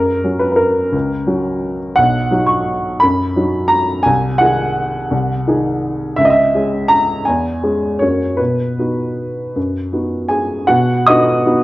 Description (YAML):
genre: classical, piano waltz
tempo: 149-182 BPM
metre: 3/4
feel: rubato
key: B major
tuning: A4 = 439 Hz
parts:
  - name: warm upright piano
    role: solo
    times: 0.0-11.6 s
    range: B1 to D#6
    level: -13 LUFS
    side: equal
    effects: none
room: wet recital hall reverb, RT60 1.3 s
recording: worn, warbling old tape, cassette tape, warbly pitch drift, nothing above 10.4 kHz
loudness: -13 LUFS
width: side -17 dB against mid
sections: 0.0-10.7 A section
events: none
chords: 0.0 F#; 2.0 B; 4.1 G#7/B#; 6.2 C#m; 7.3 C#m/E; 8.0 F#; 8.4 B